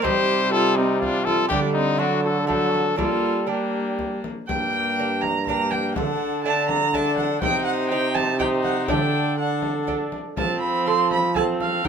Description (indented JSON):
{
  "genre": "classical, renaissance-style consort dance",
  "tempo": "122 BPM",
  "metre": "3/4",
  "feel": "straight",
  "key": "G minor",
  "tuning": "A4 = 439 Hz",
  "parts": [
    { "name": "warm cornet", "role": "melody", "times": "0.0-11.9 s", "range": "Eb4 to C5", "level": "-26 LUFS", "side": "left 5 dB", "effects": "none" },
    { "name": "rich viola", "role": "second line", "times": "0.0-11.9 s", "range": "C4 to C6", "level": "-25 LUFS", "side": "right 3 dB", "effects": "none" },
    { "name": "lute", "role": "accompaniment", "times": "0.0-11.9 s", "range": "G2 to A4", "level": "-30 LUFS", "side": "right 7 dB", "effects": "none" },
    { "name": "warm viola", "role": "accompaniment", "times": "0.0-11.9 s", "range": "F#3 to Eb4", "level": "-28 LUFS", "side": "left 2 dB", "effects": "none" },
    { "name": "warm trombone", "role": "bass", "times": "0.0-11.9 s", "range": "G2 to G3", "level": "-26 LUFS", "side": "right 2 dB", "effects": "none" },
    { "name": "frame drum", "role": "percussion", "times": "0.0-11.9 s", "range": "none", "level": "-31 LUFS", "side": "left 2 dB", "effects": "none" }
  ],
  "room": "light reverb",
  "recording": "minimal, uncompressed stereo recording",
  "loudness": "-20 LUFS",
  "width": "side -7 dB against mid",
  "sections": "0.0-4.5 A section; 4.5-11.9 B section",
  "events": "none",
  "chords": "0.0 Cm; 1.5 Dsus4; 2.0 D; 3.0 Gm; 6.0 D; 7.4 Cm; 8.9 Dsus4; 9.4 D; 10.4 F",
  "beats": "| 0.04 0.53 1.02 | 1.51 2.00 2.49 | 2.99 3.49 3.98 | 4.48 4.97 5.46 | 5.95 6.44 6.93 | 7.42 7.91 8.40 | 8.89 9.38 9.88 | 10.38 10.87 11.36 | 11.85"
}